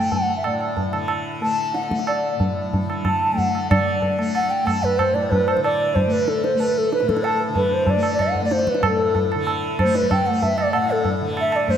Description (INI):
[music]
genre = indian classical, Hindustani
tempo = 187 BPM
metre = 4/4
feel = straight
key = A raga bageshri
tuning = A4 = 440 Hz
[part]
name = hollow bansuri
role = melody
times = 0.0-11.8 s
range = A4 to A5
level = -21 LUFS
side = equal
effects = diffuse ambient delay
[part]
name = tanpura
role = drone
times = 0.0-11.8 s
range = A2 to A3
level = -27 LUFS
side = left 2 dB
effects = none
[part]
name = tabla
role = percussion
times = 0.1-11.8 s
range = none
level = -23 LUFS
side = right 1 dB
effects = none
[sound]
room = wet lush hall reverb, RT60 2.8 s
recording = dreamy mix soaked in reverb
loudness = -18 LUFS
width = side -9 dB against mid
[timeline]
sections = 0.0-3.7 A section; 3.7-11.8 B section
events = speeding up 0.0-11.8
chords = none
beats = 0.12 0.45 0.77 | 1.10 1.43 1.75 2.08 | 2.41 2.73 3.06 3.38 | 3.71 4.03 4.35 4.67 | 5.00 5.32 5.64 5.96 | 6.28 6.60 6.92 7.24 | 7.56 7.88 8.20 8.52 | 8.84 9.15 9.47 9.79 | 10.11 10.42 10.74 11.05 | 11.37 11.68